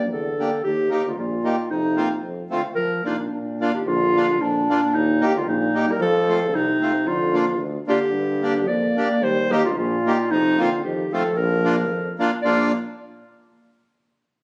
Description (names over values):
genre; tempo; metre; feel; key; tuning
alpine folk, alpine dance band; 112 BPM; 2/4; swing 55% on 8ths, rubato; Bb major; A4 = 440 Hz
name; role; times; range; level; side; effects
dark clarinet; melody; 0.0-12.7 s; D4 to D5; -24 LUFS; equal; none
mellow euphonium; second line; 0.0-12.7 s; Bb2 to Bb3; -30 LUFS; equal; none
clear tuba; bass; 0.0-12.7 s; Bb1 to G2; -30 LUFS; equal; none
accordion; accompaniment; 0.4-12.7 s; A3 to G4; -26 LUFS; equal; none
room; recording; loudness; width
light reverb; recorded on a phone in the room, club reverb; -21 LUFS; mono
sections
0.0-3.9 A section; 3.9-12.4 A section; 12.4-13.5 B section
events
none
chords
0.0 Gm; 0.6 Eb; 1.7 F7sus4; 2.2 F; 2.8 Bb; 4.9 Eb; 6.0 F; 7.1 Bb/F; 8.1 Gm; 9.2 Eb; 10.3 F7sus4; 10.8 F7; 11.4 Bb